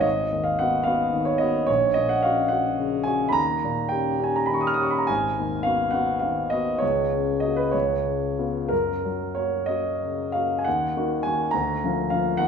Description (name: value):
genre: classical, romantic character piece for solo piano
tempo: 59-75 BPM (dotted quarters)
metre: 6/8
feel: rubato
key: F# major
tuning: A4 = 440 Hz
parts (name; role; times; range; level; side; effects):
- warm concert grand piano; solo; 0.0-12.5 s; G#1 to E#6; -21 LUFS; equal; none
room: wet recital hall reverb, RT60 1.6 s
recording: minimal, uncompressed stereo recording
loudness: -21 LUFS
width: side -6 dB against mid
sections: 0.0-10.7 A section; 10.7-12.5 B section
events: none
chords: 0.0 G#m7; 1.7 F#/A#; 3.4 D#7; 5.1 G#m7; 6.8 F#/C#; 7.7 C#7; 8.7 F#; 10.7 Ebm; 11.5 Bb/D